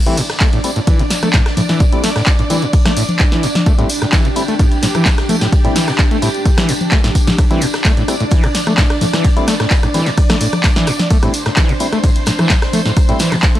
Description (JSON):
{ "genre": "acid house", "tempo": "129 BPM", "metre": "4/4", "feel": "straight", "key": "A minor", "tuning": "A4 = 440 Hz", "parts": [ { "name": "string machine, full ensemble", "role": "sustained chords", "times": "0.0-13.6 s", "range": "D4 to D5", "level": "-21 LUFS", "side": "equal", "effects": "ensemble chorus, sidechain pumping" }, { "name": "overdriven acid bass", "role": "riff", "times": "0.1-13.6 s", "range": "A2 to A3", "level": "-19 LUFS", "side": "equal", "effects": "distortion, tube saturation, lush chorus, sidechain pumping, tape echo" }, { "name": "percussive organ stab", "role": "stabs", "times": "0.1-13.2 s", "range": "G3 to E4", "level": "-24 LUFS", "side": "left 2 dB", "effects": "chorus, cassette tape, tape echo" }, { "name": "punchy analog drum machine", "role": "drums", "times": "0.1-13.6 s", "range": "congas, handclaps, hi-hat, ride cymbal, rim click, snare drum", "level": "-18 LUFS", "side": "equal", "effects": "none" }, { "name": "tambourine", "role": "percussion", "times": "0.1-13.6 s", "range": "none", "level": "-28 LUFS", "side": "right 2 dB", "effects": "none" }, { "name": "vintage brush drum kit", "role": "drums", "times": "0.2-13.5 s", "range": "hi-hat, ride cymbal, snare drum", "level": "-30 LUFS", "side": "right 1 dB", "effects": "none" }, { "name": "electronic kick drum", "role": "drums", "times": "0.4-13.5 s", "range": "none", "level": "-13 LUFS", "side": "equal", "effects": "none" } ], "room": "studio reverb", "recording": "dry, gritty hardware recording", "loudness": "-11 LUFS", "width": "side -13 dB against mid", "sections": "0.0-13.6 A section", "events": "none", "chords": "0.0 Am7" }